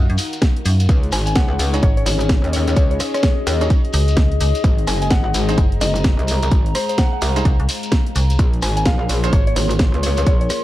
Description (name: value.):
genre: bass house.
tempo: 128 BPM.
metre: 4/4.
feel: swing 61% on 16ths.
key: unclear.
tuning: A4 = 445 Hz.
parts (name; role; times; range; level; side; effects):
dark analog pad; sustained chords; 0.0-10.6 s; Ab3 to Gb5; -30 LUFS; left 3 dB; chorus, sidechain pumping.
bright baby grand piano; stabs; 0.0-9.4 s; Db4 to Db5; -28 LUFS; right 5 dB; sidechain pumping, digital delay.
metallic FM bass; bass; 0.0-9.5 s; Gb1 to Gb2; -17 LUFS; equal; overdrive, sidechain pumping.
warbly tape-like pad; texture; 0.0-10.6 s; Db4 to C6; -27 LUFS; left 3 dB; chorus, built-in reverb, sidechain pumping.
house drum kit; drums; 0.1-10.6 s; hi-hat, rim click, snare drum; -24 LUFS; right 1 dB; none.
shekere; percussion; 0.2-10.6 s; none; -30 LUFS; left 3 dB; none.
electronic kick drum; drums; 0.4-10.4 s; none; -16 LUFS; equal; none.
metallic wobble bass; bass; 0.9-10.5 s; Gb1 to Eb2; -20 LUFS; equal; chorus, tube saturation, sidechain pumping.
soft synth bell; melody; 1.1-10.5 s; C5 to Ab5; -25 LUFS; left 1 dB; chorus, digital delay.
room: digital ambience.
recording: dark, warm production.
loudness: -15 LUFS.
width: side -15 dB against mid.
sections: 0.0-10.6 A section.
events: none.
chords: 0.0 Ebmadd9; 0.9 Dbsus2; 4.6 Ab; 8.4 Bbm7.